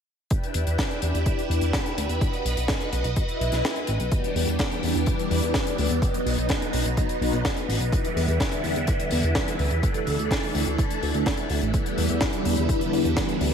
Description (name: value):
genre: italo disco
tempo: 126 BPM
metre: 4/4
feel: straight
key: E minor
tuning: A4 = 436 Hz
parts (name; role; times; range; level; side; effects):
- phased string machine; sustained chords; 0.3-13.5 s; D3 to E5; -26 LUFS; equal; ensemble chorus, phaser
- electronic kick drum; drums; 0.3-13.3 s; none; -26 LUFS; equal; none
- tight funk drum kit; drums; 0.3-13.5 s; hi-hat, snare drum; -30 LUFS; left 1 dB; gated reverb
- chorused synth bass; bass; 0.5-13.5 s; A1 to E2; -26 LUFS; equal; none
- swell; sound effects; 3.3-4.1 s; none; -32 LUFS; right 1 dB; none
room: light reverb, small room ambience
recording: none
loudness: -22 LUFS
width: side -7 dB against mid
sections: 0.3-4.1 A section; 4.1-13.5 B section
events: swell 3.3-4.1; kick drops out 3.6-4.1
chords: 0.3 Em7; 2.2 B; 4.1 Em7; 6.0 B; 7.9 Em7; 9.8 Dsus2; 11.7 Em7